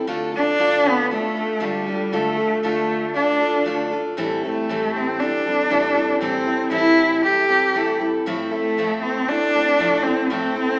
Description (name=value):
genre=acoustic folk duo or small band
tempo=117 BPM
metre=4/4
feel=straight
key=A minor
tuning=A4 = 440 Hz
part: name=picked steel-string acoustic guitar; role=accompaniment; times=0.0-10.8 s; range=A2 to A4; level=-22 LUFS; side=equal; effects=none
part: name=rich cello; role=melody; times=0.4-10.8 s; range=G3 to G4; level=-19 LUFS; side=equal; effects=none
room=wet recital hall reverb, RT60 1.5 s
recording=recorded in a church or concert hall, small speaker sound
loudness=-17 LUFS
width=side -29 dB against mid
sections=0.0-10.8 A section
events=none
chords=0.1 Dm; 4.2 Am7; 8.3 Fmaj7/A